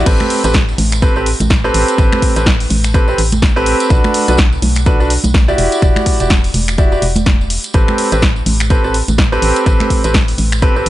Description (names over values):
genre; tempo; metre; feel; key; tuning
piano house; 125 BPM; 4/4; swing 58% on 16ths; A dorian; A4 = 440 Hz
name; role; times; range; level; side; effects
clear concert grand piano; riff; 0.0-10.9 s; C4 to D5; -16 LUFS; right 1 dB; sidechain pumping, dub echo
organ-like FM bass; bass; 0.0-10.9 s; E1 to B1; -17 LUFS; equal; sidechain pumping
electronic kick drum; drums; 0.1-10.7 s; none; -13 LUFS; equal; none
punchy analog drum machine; drums; 0.1-10.9 s; crash cymbal, finger snaps, hi-hat, snare drum; -18 LUFS; equal; none
tambourine and congas; percussion; 0.1-10.8 s; none; -22 LUFS; right 3 dB; none
room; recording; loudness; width
little or no reverb; nothing above 10.8 kHz; -10 LUFS; side -15 dB against mid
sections
0.1-10.9 A section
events
drop 0.1-10.9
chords
0.1 Am9; 3.9 Bm7; 5.6 Em9; 7.7 Am9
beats
| 0.06 0.54 1.02 1.50 | 1.98 2.46 2.94 3.42 | 3.90 4.38 4.86 5.34 | 5.82 6.30 6.78 7.26 | 7.74 8.22 8.70 9.18 | 9.66 10.14 10.62